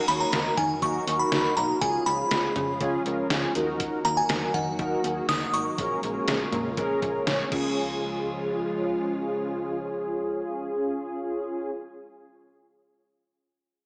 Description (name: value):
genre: synth-pop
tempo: 121 BPM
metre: 4/4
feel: straight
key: Db mixolydian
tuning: A4 = 440 Hz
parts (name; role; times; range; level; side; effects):
- mellow synth brass; accompaniment; 0.0-11.7 s; Db4 to Db5; -31 LUFS; equal; chorus, slapback echo
- soft string machine; sustained chords; 0.0-11.7 s; Db3 to Gb4; -36 LUFS; equal; ensemble chorus
- glassy synth bell; melody; 0.1-7.2 s; Gb5 to Eb6; -30 LUFS; equal; chorus, slapback echo
- slap-like FM bass; bass; 0.1-11.7 s; Ab1 to Eb3; -37 LUFS; equal; none
- detuned 8-bit digital drum machine; drums; 0.1-7.6 s; crash cymbal, hi-hat, kick drum, snare drum, toms; -33 LUFS; equal; none
room: wet lush hall reverb, RT60 2.1 s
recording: big arena sound, small speaker sound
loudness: -27 LUFS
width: mono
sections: 0.0-7.8 A section; 7.8-11.7 B section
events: none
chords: 0.0 Ebm; 1.8 Db; 3.6 Ebm; 5.8 Bbm7; 7.5 Db